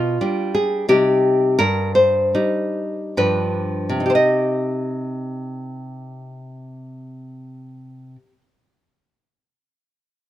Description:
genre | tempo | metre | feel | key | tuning
romantic piece for solo classical guitar | 60-93 BPM | 3/4 | rubato | C minor | A4 = 438 Hz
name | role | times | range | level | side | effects
nylon-string guitar | solo | 0.0-8.4 s | G2 to Eb5 | -18 LUFS | equal | none
room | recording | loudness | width
moderate spring reverb, RT60 2.3 s | minimal, uncompressed stereo recording | -17 LUFS | side -12 dB against mid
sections
0.0-4.1 A section; 4.1-9.7 B section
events
slowing down 0.0-4.1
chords
0.0 G7/B; 0.9 Cm; 1.6 Cm/G; 3.2 G7; 4.1 Cm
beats
0.20 0.89 | 1.60 2.35 3.19 | 4.15 5.06 5.97 | 6.89 7.82

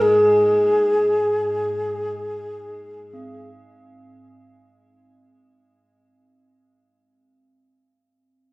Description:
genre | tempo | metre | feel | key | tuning
world meditative, free-time meditation music | free time | none | none | Ab major pentatonic | A4 = 442 Hz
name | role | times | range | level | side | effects
breathy xiao | melody | 0.0-3.5 s | Ab4 | -18 LUFS | equal | none
icy glass pad | drone | 0.0-5.8 s | Ab2 to Ab3 | -34 LUFS | equal | chorus, built-in reverb
bronze singing bowl | texture | 0.0-6.2 s | Bb3 to C4 | -48 LUFS | equal | none
room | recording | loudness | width
wet studio reverb, RT60 0.6 s | worn, warbling old tape, cassette tape, warbly pitch drift | -17 LUFS | side -22 dB against mid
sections
0.0-5.7 A section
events
fade-out 0.0-5.7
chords
none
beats
free time

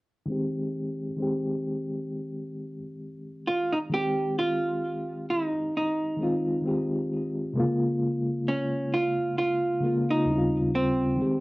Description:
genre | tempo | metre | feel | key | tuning
hip hop | 66 BPM | 4/4 | swing 56% on 16ths | Ab major | A4 = 440 Hz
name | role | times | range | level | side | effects
reed electric piano | accompaniment | 0.3-11.4 s | Eb2 to G4 | -28 LUFS | left 1 dB | medium tremolo, cassette tape, low-pass filter
archtop guitar, miked and amplified | melody | 3.5-11.4 s | C4 to G4 | -26 LUFS | right 1 dB | low-pass filter
room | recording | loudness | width
wet studio reverb, RT60 0.6 s | worn, warbling old tape, cassette tape, warbly pitch drift | -25 LUFS | side -21 dB against mid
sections
0.3-3.9 A section; 3.9-11.4 B section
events
filter sweep on reed electric piano 0.3-3.9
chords
0.3 Abmaj7; 7.6 Bbm7; 10.3 Eb13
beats
| 0.28 1.19 2.10 3.01 | 3.92 4.83 5.74 6.64 | 7.55 8.46 9.37 10.28 | 11.19

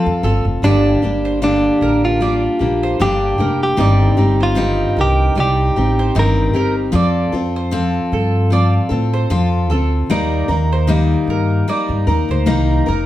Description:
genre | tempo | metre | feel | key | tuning
acoustic pop | 76 BPM | 4/4 | swing 55% on 16ths | G minor | A4 = 441 Hz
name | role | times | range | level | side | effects
direct-recorded clean electric guitar | melody | 0.0-6.7 s | D4 to Bb4 | -18 LUFS | right 1 dB | none
picked steel-string acoustic guitar | accompaniment | 0.0-13.1 s | G2 to Bb4 | -18 LUFS | left 2 dB | none
upright bass | bass | 0.1-13.0 s | F1 to A2 | -17 LUFS | equal | none
mandolin | arpeggios | 0.2-13.1 s | A4 to D5 | -25 LUFS | right 4 dB | none
room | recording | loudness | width
moderate studio reverb, RT60 0.5 s | heard from further back in the room | -13 LUFS | side -14 dB against mid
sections
0.6-13.1 A section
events
none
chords
0.0 F; 0.6 Gm; 3.8 Cm/G; 6.9 F; 10.1 Eb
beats
| 0.63 1.42 2.21 3.00 | 3.79 4.58 5.37 6.16 | 6.95 7.74 8.53 9.31 | 10.11 10.89 11.69 12.47

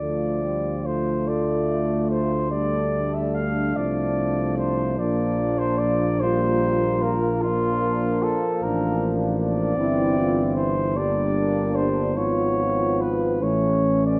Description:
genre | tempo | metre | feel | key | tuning
classical, hymn-like piece for brass band | 45-53 BPM (dotted quarters) | 12/8 | rubato | D minor | A4 = 440 Hz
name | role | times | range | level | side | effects
mellow flugelhorn | melody | 0.0-14.2 s | F4 to F5 | -28 LUFS | equal | none
mellow French horn section | second line | 0.0-14.2 s | C#4 to E#4 | -30 LUFS | equal | none
clear trombone | accompaniment | 0.0-14.2 s | E3 to A3 | -32 LUFS | equal | none
clear trombone section | accompaniment | 0.0-14.2 s | G3 to C4 | -31 LUFS | equal | none
mellow tuba | bass | 0.0-14.2 s | G1 to D2 | -28 LUFS | equal | none
room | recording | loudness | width
moderate scoring stage reverb, RT60 1.5 s | dark, warm production | -23 LUFS | mono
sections
0.0-14.2 A section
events
none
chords
0.0 Dm; 5.0 Bb; 9.8 Em7b5/G; 12.1 C#7/G#; 13.4 A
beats
1.28 2.53 3.77 | 5.00 6.22 7.45 8.63 | 9.77 10.96 12.15 13.41

